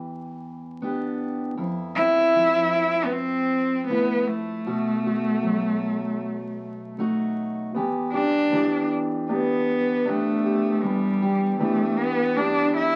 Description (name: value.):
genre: acoustic folk-pop ballad.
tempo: 78 BPM.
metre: 4/4.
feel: straight.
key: E phrygian.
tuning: A4 = 441 Hz.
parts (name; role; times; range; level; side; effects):
fingerpicked steel-string acoustic guitar; accompaniment; 0.0-13.0 s; E2 to G4; -31 LUFS; equal; none.
warm cello; melody; 2.0-13.0 s; G3 to E4; -24 LUFS; equal; none.
felt-muted upright piano; arpeggios; 7.7-13.0 s; B3 to G4; -29 LUFS; equal; none.
room: wet club reverb, RT60 0.5 s.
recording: very old 78 rpm record, vinyl crackle.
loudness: -24 LUFS.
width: mono.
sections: 0.0-7.7 A section; 7.7-13.0 A section.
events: none.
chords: 0.0 Em7; 1.6 Fmaj7; 4.7 B7; 7.7 Em7.